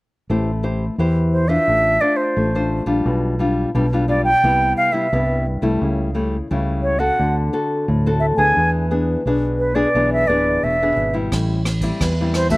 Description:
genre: samba and choro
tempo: 87 BPM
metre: 4/4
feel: straight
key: A minor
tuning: A4 = 439 Hz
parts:
  - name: nylon-string guitar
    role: accompaniment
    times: 0.3-12.6 s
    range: G2 to C5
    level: -21 LUFS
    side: left 2 dB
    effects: none
  - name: deep dub fingered electric bass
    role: bass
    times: 0.3-12.6 s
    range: D1 to E2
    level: -21 LUFS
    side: right 1 dB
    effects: none
  - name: concert flute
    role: melody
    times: 1.3-12.6 s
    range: B4 to G#5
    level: -17 LUFS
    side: right 1 dB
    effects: slapback echo
  - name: vintage brush drum kit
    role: drums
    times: 11.3-12.6 s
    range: kick drum, ride cymbal, rim click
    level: -25 LUFS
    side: right 1 dB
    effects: none
room: little or no reverb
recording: recorded outdoors, with no room sound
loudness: -16 LUFS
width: side -21 dB against mid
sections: 0.3-12.6 A section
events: none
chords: 0.3 Am7; 1.7 Dm7/A; 3.1 G7/B; 4.4 Cmaj7; 5.8 A7/C#; 7.2 D7; 8.6 E7; 11.3 Am7

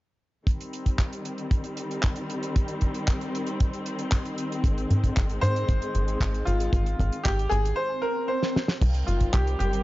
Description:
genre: italo disco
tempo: 115 BPM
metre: 4/4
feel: straight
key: C minor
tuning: A4 = 440 Hz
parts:
  - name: warm studio string section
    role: sustained chords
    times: 0.5-9.8 s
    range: Eb3 to C4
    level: -32 LUFS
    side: left 1 dB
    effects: none
  - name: damped 70s drum kit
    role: drums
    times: 0.5-9.8 s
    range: crash cymbal, handclaps, hi-hat, snare drum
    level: -32 LUFS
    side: right 1 dB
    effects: small room reverb
  - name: kick drum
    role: drums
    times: 0.5-9.4 s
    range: none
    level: -24 LUFS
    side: equal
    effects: small room reverb
  - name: tight sequencer bass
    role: bass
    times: 4.6-9.8 s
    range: G1 to Ab2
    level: -25 LUFS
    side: equal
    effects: none
  - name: bright grand piano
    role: melody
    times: 5.4-9.8 s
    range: F4 to C5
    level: -29 LUFS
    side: equal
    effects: tape echo
  - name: swell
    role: sound effects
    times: 7.9-8.8 s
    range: none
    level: -32 LUFS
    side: equal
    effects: none
room: studio reverb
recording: dry, gritty hardware recording, nothing above 7.5 kHz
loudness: -24 LUFS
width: side -17 dB against mid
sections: 0.5-8.8 A section; 8.8-9.8 B section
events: swell 7.9-8.8; drum fill 8.4-8.8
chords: 0.5 Cm; 4.6 Ab; 8.8 Cm

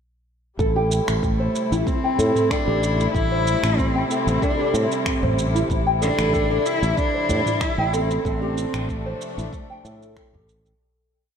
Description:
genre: organic downtempo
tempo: 94 BPM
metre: 4/4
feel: swing 53% on 16ths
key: A minor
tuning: A4 = 440 Hz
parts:
  - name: rich chamber string section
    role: sustained chords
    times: 0.6-10.8 s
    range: C3 to E4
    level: -29 LUFS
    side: left 3 dB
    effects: sidechain pumping
  - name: nylon-string guitar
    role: arpeggios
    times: 0.6-10.5 s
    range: E4 to G5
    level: -24 LUFS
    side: equal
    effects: wide subtle chorus, low-pass filter, tape echo
  - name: sustaining fretless electric bass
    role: bass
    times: 0.6-10.7 s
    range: A1 to A2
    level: -24 LUFS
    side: equal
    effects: sidechain pumping
  - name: afro-pop drum kit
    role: drums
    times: 0.6-10.8 s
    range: finger snaps, shaker, toms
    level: -31 LUFS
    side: right 1 dB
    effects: small room ambience
  - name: electronic kick drum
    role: drums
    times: 0.6-10.3 s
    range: none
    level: -27 LUFS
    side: equal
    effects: small room ambience
  - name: rich cello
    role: melody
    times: 1.2-10.2 s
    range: A3 to E4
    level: -25 LUFS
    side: equal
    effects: tape echo
  - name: udu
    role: percussion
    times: 2.2-10.5 s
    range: none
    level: -29 LUFS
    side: equal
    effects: none
room: moderate plate reverb, RT60 2.5 s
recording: dreamy mix soaked in reverb, faint mains hum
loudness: -19 LUFS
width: side -7 dB against mid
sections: 0.6-10.8 groove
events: fade-out 7.4-10.8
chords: 0.6 Am7; 8.3 Dm7/A

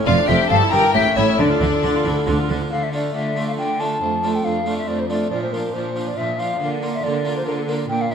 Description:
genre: classical, baroque-style concerto movement with solo episodes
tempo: 138 BPM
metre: 3/4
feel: straight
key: D minor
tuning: A4 = 438 Hz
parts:
  - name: dark chamber viola section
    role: accompaniment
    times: 0.0-8.1 s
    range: F3 to G4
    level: -26 LUFS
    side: right 4 dB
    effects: none
  - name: harpsichord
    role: accompaniment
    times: 0.0-8.1 s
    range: F2 to A4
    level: -26 LUFS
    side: equal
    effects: none
  - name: hollow concert flute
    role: melody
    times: 0.1-8.1 s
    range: A4 to A5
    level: -22 LUFS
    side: left 2 dB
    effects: none
  - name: rich chamber violin section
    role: melody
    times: 0.1-8.1 s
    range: D4 to Bb5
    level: -29 LUFS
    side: left 4 dB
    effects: none
  - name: rich chamber violin section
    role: second line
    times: 0.1-8.1 s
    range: D4 to Bb4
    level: -26 LUFS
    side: left 6 dB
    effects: none
  - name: rich chamber cello section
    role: bass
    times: 0.1-8.1 s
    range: F2 to D3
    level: -25 LUFS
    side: right 3 dB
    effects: none
  - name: rich chamber double bass section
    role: bass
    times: 0.1-2.6 s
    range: F1 to D2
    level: -24 LUFS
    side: right 3 dB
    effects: none
room: moderate scoring stage reverb, RT60 1.6 s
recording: minimal, uncompressed stereo recording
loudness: -17 LUFS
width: side -7 dB against mid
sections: 0.0-2.7 A section; 2.7-8.1 B section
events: none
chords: 0.1 Dm/F; 0.5 Edim/G; 0.9 A7; 1.4 Dm; 4.0 Dm/F; 5.3 Bb; 6.6 Bb/D

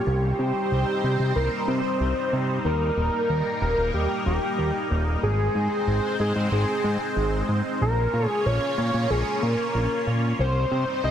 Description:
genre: synthwave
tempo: 93 BPM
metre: 4/4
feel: straight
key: unclear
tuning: A4 = 440 Hz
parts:
  - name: wide unison lead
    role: melody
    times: 0.0-11.1 s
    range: G4 to Eb5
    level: -26 LUFS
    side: equal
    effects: tape echo
  - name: lush unison pad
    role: sustained chords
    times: 0.0-11.1 s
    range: G3 to Db5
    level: -28 LUFS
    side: equal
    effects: chorus, phaser
  - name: fat analog bass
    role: bass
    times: 0.1-11.1 s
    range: Eb1 to C3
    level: -24 LUFS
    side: equal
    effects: none
room: light reverb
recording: dense, heavily limited modern master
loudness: -22 LUFS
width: side -9 dB against mid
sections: 0.0-11.1 A section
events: none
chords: 0.1 Cm; 2.6 Eb; 5.2 Ab; 7.8 Bbm; 10.4 Cm

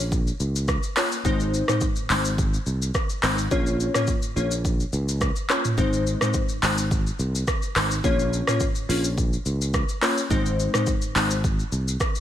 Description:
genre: afrobeats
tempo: 106 BPM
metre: 4/4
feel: swing 55% on 16ths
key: Ab major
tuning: A4 = 440 Hz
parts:
  - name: sustaining fretless electric bass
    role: bass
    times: 0.0-12.0 s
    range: Ab1 to Db2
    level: -25 LUFS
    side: equal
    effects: none
  - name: afro-pop drum kit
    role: drums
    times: 0.1-12.2 s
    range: handclaps, hi-hat, kick drum, rim click, shaker, toms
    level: -24 LUFS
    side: equal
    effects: overdrive
  - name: glassy digital keys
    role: accompaniment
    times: 1.0-11.3 s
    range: Ab3 to Db5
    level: -26 LUFS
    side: left 2 dB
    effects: chorus
room: digital ambience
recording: none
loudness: -21 LUFS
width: side -11 dB against mid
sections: 0.0-12.2 A section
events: none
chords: 0.0 Bbm; 1.2 Ab; 3.5 Bbm; 5.8 Ab; 8.0 Bbm; 10.3 Ab

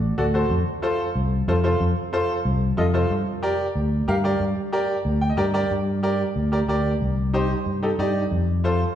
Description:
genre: latin, cumbia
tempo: 184 BPM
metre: 4/4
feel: straight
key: G minor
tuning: A4 = 440 Hz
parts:
  - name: fingered electric bass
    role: bass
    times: 0.0-8.8 s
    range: A1 to G2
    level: -23 LUFS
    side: equal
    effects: none
  - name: bright upright piano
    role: accompaniment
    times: 0.2-8.8 s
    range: Eb4 to G5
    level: -24 LUFS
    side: equal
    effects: none
room: wet recital hall reverb, RT60 1.7 s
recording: recorded in a church or concert hall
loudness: -20 LUFS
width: side -10 dB against mid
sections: 0.0-5.7 A section; 5.7-9.0 B section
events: upright piano fill 5.1-5.7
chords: 0.0 D7; 0.5 F; 3.1 Gm; 7.0 Cm; 8.3 F

